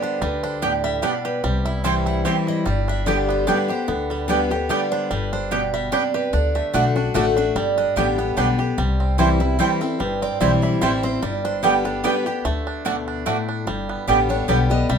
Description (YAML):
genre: bluegrass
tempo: 147 BPM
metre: 3/4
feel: swing 54% on 8ths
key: G major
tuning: A4 = 440 Hz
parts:
  - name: bluegrass banjo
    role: melody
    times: 0.0-15.0 s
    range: G3 to G4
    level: -28 LUFS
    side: right 4 dB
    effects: none
  - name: picked steel-string acoustic guitar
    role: melody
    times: 0.0-15.0 s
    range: F#4 to G5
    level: -27 LUFS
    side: right 4 dB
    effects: none
  - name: picked steel-string acoustic guitar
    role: accompaniment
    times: 0.0-15.0 s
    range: G2 to G4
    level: -23 LUFS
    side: left 4 dB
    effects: none
  - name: upright bass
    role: bass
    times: 0.2-15.0 s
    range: G1 to D2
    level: -24 LUFS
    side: left 1 dB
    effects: none
  - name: mandolin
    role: stabs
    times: 0.6-14.6 s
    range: A3 to G5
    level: -22 LUFS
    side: right 7 dB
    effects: none
room: moderate studio reverb, RT60 0.5 s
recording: minimal, uncompressed stereo recording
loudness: -18 LUFS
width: side -7 dB against mid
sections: 0.0-8.8 A section; 8.8-15.0 B section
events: none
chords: 0.0 G; 1.4 C; 2.7 G; 6.3 D; 7.6 G; 8.8 C; 11.2 G; 12.4 D; 13.7 G